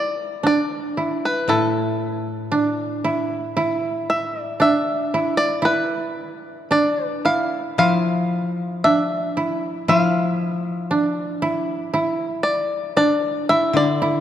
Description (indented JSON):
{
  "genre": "japanese traditional, Japanese chamber music",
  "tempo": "58 BPM",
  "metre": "2/4",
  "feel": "rubato",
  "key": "D kumoi",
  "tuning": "A4 = 442 Hz",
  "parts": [
    { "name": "bluegrass banjo", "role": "melody", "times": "0.0-14.2 s", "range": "A4 to F5", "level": "-21 LUFS", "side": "left 1 dB", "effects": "none" },
    { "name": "koto", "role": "second line", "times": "0.0-14.2 s", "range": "D4 to E4", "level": "-22 LUFS", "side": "right 2 dB", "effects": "none" },
    { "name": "koto", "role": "accompaniment", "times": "1.5-4.6, 7.8-14.2 s", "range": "A2 to F3", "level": "-24 LUFS", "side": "left 4 dB", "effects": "none" }
  ],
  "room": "wet church reverb, RT60 3.0 s",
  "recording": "dark, warm production",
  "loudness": "-18 LUFS",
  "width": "side -10 dB against mid",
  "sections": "0.0-14.2 A section",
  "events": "none",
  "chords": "none"
}